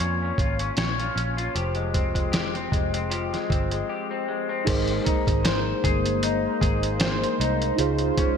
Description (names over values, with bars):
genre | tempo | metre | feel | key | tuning
indie pop, bedroom pop | 77 BPM | 4/4 | swing 55% on 16ths | Ab major | A4 = 441 Hz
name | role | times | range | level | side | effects
electric guitar through a small old amp | accompaniment | 0.0-8.4 s | Bb2 to Db5 | -27 LUFS | left 4 dB | lush chorus, vibrato effect
vintage muted fingered electric bass | bass | 0.0-8.1 s | F1 to F2 | -28 LUFS | right 1 dB | none
lo-fi sampler-style drum kit | drums | 0.0-8.4 s | crash cymbal, hi-hat, kick drum, snare drum | -26 LUFS | equal | gated reverb
mellow tine electric piano | accompaniment | 4.6-8.4 s | Eb4 to C5 | -28 LUFS | right 6 dB | medium stereo tremolo, cassette tape
warm analog pad | sustained chords | 4.7-8.4 s | Db3 to C5 | -29 LUFS | equal | chorus
room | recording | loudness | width
moderate lush hall reverb, RT60 2.8 s | bright 1980s-style digital production | -22 LUFS | side -7 dB against mid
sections
0.0-4.7 A section; 4.7-8.4 B section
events
break 3.9-4.7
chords
0.0 Bbm7; 1.6 Fmadd9; 4.7 Abadd9; 7.8 Dbmaj7